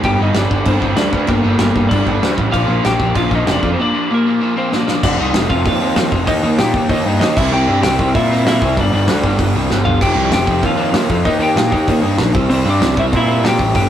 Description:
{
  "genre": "punk rock",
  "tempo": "193 BPM",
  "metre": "4/4",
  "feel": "straight",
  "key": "G minor",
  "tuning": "A4 = 440 Hz",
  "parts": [
    { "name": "lightly driven lead guitar", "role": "melody", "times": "0.0-13.9 s", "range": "Bb3 to G5", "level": "-19 LUFS", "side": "left 2 dB", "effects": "none" },
    { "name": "overdriven electric guitar", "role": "riff", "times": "0.0-13.9 s", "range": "F2 to Eb4", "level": "-20 LUFS", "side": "equal", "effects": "none" },
    { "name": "fuzz picked electric bass", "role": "bass", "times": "0.0-13.9 s", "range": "F1 to Bb2", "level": "-17 LUFS", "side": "right 1 dB", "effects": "overdrive" },
    { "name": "loose indie drum kit", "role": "drums", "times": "0.0-13.8 s", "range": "crash cymbal, hi-hat, kick drum, snare drum, toms", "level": "-19 LUFS", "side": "equal", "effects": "none" }
  ],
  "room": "light reverb",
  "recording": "rough rehearsal-room recording",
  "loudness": "-12 LUFS",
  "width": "side -10 dB against mid",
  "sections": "0.0-5.0 A section; 5.0-13.9 B section",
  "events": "drum fill 4.7-5.0, 9.7-10.0",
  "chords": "0.0 Gm; 2.5 Bb; 5.0 F5; 6.3 Eb; 7.4 C; 8.8 G5; 10.0 F5; 11.3 Eb; 12.3 C",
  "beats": "| 0.04 0.35 0.67 0.98 | 1.29 1.60 1.91 2.23 | 2.54 2.85 3.16 3.47 | 3.79 4.10 4.41 4.72 | 5.03 5.34 5.65 5.96 | 6.28 6.59 6.90 7.21 | 7.52 7.83 8.14 8.45 | 8.76 9.07 9.39 9.70 | 10.01 10.32 10.63 10.94 | 11.25 11.56 11.87 12.18 | 12.49 12.80 13.12 13.43 | 13.73"
}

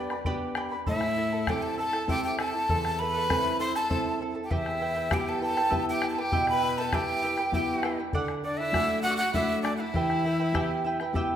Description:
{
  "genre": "andean folk, Andean ensemble",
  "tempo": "99 BPM",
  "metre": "3/4",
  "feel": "straight",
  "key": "E minor",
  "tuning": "A4 = 440 Hz",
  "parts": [
    { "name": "breathy bright quena", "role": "melody", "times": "0.0-11.1 s", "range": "D5 to C6", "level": "-29 LUFS", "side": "equal", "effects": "none" },
    { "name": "clear fiddle", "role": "second line", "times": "0.0-11.1 s", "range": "D4 to C5", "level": "-36 LUFS", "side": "left 1 dB", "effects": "none" },
    { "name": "charango", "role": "accompaniment", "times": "0.0-11.4 s", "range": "E4 to B5", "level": "-32 LUFS", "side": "right 3 dB", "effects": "none" },
    { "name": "nylon-string guitar", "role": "accompaniment", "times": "0.0-11.4 s", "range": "E2 to A4", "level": "-32 LUFS", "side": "left 1 dB", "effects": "none" },
    { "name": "bombo", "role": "percussion", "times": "0.1-11.3 s", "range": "none", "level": "-33 LUFS", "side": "left 1 dB", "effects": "none" }
  ],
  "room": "wet recital hall reverb, RT60 1.6 s",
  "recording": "none",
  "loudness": "-25 LUFS",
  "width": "side -10 dB against mid",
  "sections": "0.0-11.4 A section",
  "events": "none",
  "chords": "0.0 G; 0.9 Am; 4.5 Em; 8.1 D; 10.0 Em",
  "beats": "0.26 | 0.87 1.48 2.08 | 2.69 3.30 3.91 | 4.51 5.12 5.72 | 6.33 6.93 7.54 | 8.14 8.75 9.35 | 9.95 10.55 11.15"
}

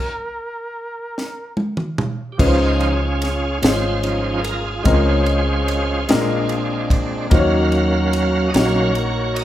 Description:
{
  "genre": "slow gospel",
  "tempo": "49 BPM (dotted quarters)",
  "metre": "6/8",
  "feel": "straight",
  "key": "Db major",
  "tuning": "A4 = 440 Hz",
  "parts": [
    { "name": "clear trumpet", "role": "melody", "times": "0.0-1.5 s", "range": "Bb4", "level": "-28 LUFS", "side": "right 1 dB", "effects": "none" },
    { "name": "tight funk drum kit", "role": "drums", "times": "1.2-9.4 s", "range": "crash cymbal, kick drum, ride cymbal, snare drum, toms", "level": "-20 LUFS", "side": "equal", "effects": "none" },
    { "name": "bright tonewheel organ", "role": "sustained chords", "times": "2.3-9.4 s", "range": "F3 to F5", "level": "-20 LUFS", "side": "right 2 dB", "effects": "slow rotary speaker, overdrive, chorus vibrato" },
    { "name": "warm grand piano", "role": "accompaniment", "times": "2.4-9.4 s", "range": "Bb2 to Db5", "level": "-21 LUFS", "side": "left 3 dB", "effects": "none" },
    { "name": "hollow-body short-scale fingered electric bass", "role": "bass", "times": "2.4-9.4 s", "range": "Ab1 to Eb2", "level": "-22 LUFS", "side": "equal", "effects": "none" }
  ],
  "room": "wet large studio reverb, RT60 0.8 s",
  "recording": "band playing live in one room",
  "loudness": "-16 LUFS",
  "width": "side -12 dB against mid",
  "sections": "0.0-2.4 A section; 2.4-9.4 B section",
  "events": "stop 0.0-2.4; drum fill 1.2-2.4; tonewheel organ solo 2.4-9.4",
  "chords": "0.0 N.C.; 2.4 Dbmaj7; 4.9 Bbm7/Db; 6.1 Bb7; 7.3 Ebm7",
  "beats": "1.16 | 2.40 3.63 | 4.86 6.09 | 7.32 8.54"
}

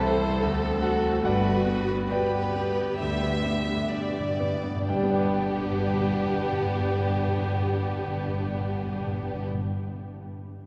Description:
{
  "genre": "classical, romantic movement for piano and orchestra",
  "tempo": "60-82 BPM",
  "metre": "4/4",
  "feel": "rubato",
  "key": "G major",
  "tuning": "A4 = 440 Hz",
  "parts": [
    { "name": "clear concert grand piano", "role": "melody", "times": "0.0-10.7 s", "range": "C2 to A5", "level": "-32 LUFS", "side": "equal", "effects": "none" },
    { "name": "dark studio violin section", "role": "melody", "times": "0.0-9.5 s", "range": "G3 to G4", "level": "-39 LUFS", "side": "equal", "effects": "none" },
    { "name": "rich studio violin section", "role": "second line", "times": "0.0-9.5 s", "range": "B3 to E5", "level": "-35 LUFS", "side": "equal", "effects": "none" },
    { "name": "warm studio viola section", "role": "accompaniment", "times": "0.0-9.5 s", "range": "F#4 to A4", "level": "-35 LUFS", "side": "equal", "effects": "none" },
    { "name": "rich studio double bass section", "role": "bass", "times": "0.0-9.5 s", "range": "G1 to D2", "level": "-36 LUFS", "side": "equal", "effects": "none" },
    { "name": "warm studio cello section", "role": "bass", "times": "0.0-9.5 s", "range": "C2 to G2", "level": "-35 LUFS", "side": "equal", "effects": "none" },
    { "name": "timpani", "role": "percussion", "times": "1.2-9.6 s", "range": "G2", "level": "-35 LUFS", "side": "equal", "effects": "none" }
  ],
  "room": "wet cathedral reverb, RT60 4.5 s",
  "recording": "none",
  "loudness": "-27 LUFS",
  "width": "mono",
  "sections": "0.0-4.9 A section; 4.9-8.7 B section",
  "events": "slowing down 0.0-4.9; timpani fill 1.2-4.9",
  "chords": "0.4 D7; 1.2 G",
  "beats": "0.44 | 1.24 2.10 3.00 3.91 | 4.89 5.84 6.80 7.75"
}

